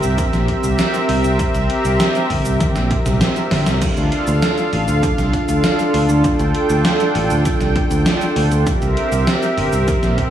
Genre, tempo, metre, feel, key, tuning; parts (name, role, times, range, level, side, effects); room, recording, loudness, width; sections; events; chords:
synthwave; 99 BPM; 4/4; straight; D minor; A4 = 438 Hz
warm analog pad; sustained chords; 0.0-10.3 s; C4 to G5; -18 LUFS; right 1 dB; chorus, sidechain pumping
picked electric bass; bass; 0.0-10.2 s; G1 to D2; -19 LUFS; equal
gated 80s digital drum machine; drums; 0.0-10.3 s; cabasa, crash cymbal, hi-hat, snare drum, toms; -21 LUFS; equal; gated reverb, gated reverb snare, overdrive
electronic kick drum; drums; 0.2-10.3 s; -20 LUFS; equal; overdrive
moderate plate reverb, RT60 1.8 s; dreamy mix soaked in reverb, studio reverb; -14 LUFS; side -10 dB against mid
0.0-10.3 A section
drum fill 2.6-3.8
0.0 C7; 3.8 Dm; 8.7 C7